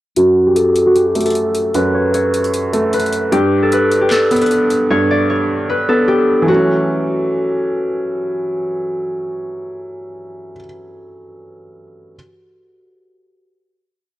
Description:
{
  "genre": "hip hop, trap",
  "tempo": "152 BPM",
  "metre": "4/4",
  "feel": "half-time",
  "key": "F# phrygian",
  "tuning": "A4 = 440 Hz",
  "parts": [
    { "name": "concert harp", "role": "melody", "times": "0.2-8.9 s", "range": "F#4 to D5", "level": "-15 LUFS", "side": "left 1 dB", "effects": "low-pass filter, tape echo" },
    { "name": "felt-muted upright piano", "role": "accompaniment", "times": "0.2-12.2 s", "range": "F#2 to C#4", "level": "-18 LUFS", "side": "right 2 dB", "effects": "low-pass filter" },
    { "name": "trap drum kit", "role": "drums", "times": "0.2-4.8 s", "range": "handclaps, hi-hat, snare drum", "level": "-26 LUFS", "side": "left 1 dB", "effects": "overdrive" }
  ],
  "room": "small room ambience",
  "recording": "dry, gritty hardware recording, cassette tape",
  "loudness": "-13 LUFS",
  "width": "side -15 dB against mid",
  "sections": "0.2-6.5 breakdown; 6.5-9.6 final chord",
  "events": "filter sweep 0.2-6.5",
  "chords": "0.2 F#m; 3.3 G; 6.5 F#m7",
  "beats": "| 0.17 0.56 0.95 1.35 | 1.75 2.14 2.53 2.93 | 3.32 3.72 4.11 4.51 | 4.90 5.30 5.69 6.09 | 6.48 6.88 7.27 7.67 | 8.06 8.46 8.85 9.24"
}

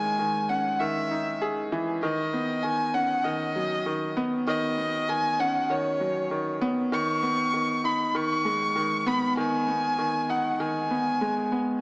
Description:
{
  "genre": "electronica",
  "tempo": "98 BPM",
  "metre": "4/4",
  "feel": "straight",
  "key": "unclear",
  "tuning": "A4 = 443 Hz",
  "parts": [
    { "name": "warm violin", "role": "melody", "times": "0.0-11.5 s", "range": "C#5 to C#6", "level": "-26 LUFS", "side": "equal", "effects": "none" },
    { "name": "clear concert grand piano", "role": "riff", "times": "0.0-11.8 s", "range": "D#3 to G#4", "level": "-27 LUFS", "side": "equal", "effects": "none" }
  ],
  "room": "moderate echo chamber reverb, RT60 2.4 s",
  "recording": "small speaker sound",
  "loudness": "-24 LUFS",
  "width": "side -29 dB against mid",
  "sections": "0.0-11.8 A section",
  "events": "drop 0.0-11.8",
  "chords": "0.0 C#madd9; 2.0 Badd9; 6.9 G#m",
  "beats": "0.19 0.80 1.41 | 2.03 2.64 3.25 3.86 | 4.47 5.09 5.70 6.31 | 6.92 7.54 8.15 8.76 | 9.37 9.98 10.60 11.21"
}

